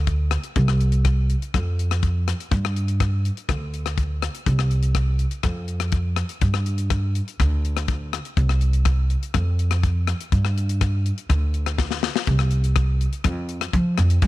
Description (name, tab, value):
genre	highlife guitar band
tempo	123 BPM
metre	4/4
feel	straight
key	unclear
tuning	A4 = 440 Hz
part	upright bass	bass	0.0-14.3 s	C2 to F3	-20 LUFS	equal	none
part	tight funk drum kit	drums	0.1-14.3 s	hi-hat, kick drum, rim click, snare drum	-25 LUFS	left 3 dB	none
room	little or no reverb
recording	1960s-style stereo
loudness	-20 LUFS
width	side -16 dB against mid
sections	0.0-12.3 A section; 12.3-14.3 B section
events	drum fill 11.8-12.3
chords	none